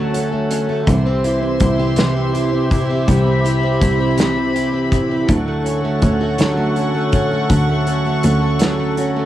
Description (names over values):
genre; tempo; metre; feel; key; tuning
six-eight pop ballad; 54 BPM (dotted quarters); 6/8; straight; D major; A4 = 440 Hz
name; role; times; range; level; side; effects
direct-recorded clean electric guitar; accompaniment; 0.0-9.3 s; C3 to E4; -19 LUFS; equal; double-tracked left and right, cassette tape
dark studio string section; sustained chords; 0.0-9.3 s; F#4 to C#6; -22 LUFS; left 2 dB; cassette tape
picked plugged-in steel-string acoustic guitar; arpeggios; 0.0-9.3 s; E3 to A4; -23 LUFS; right 4 dB; cassette tape
warm cello; bass; 0.0-9.3 s; C2 to D2; -20 LUFS; equal; none
loose indie drum kit; drums; 0.1-9.1 s; hi-hat, kick drum, snare drum; -19 LUFS; equal; cassette tape
room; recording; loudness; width
moderate booth ambience, RT60 0.2 s; home recording on cassette; -14 LUFS; side -12 dB against mid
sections
0.0-9.3 A section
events
none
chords
0.0 Dmaj7; 0.9 C; 5.3 Dmaj7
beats
| 0.87 1.98 | 3.08 4.19 | 5.29 6.39 | 7.50 8.60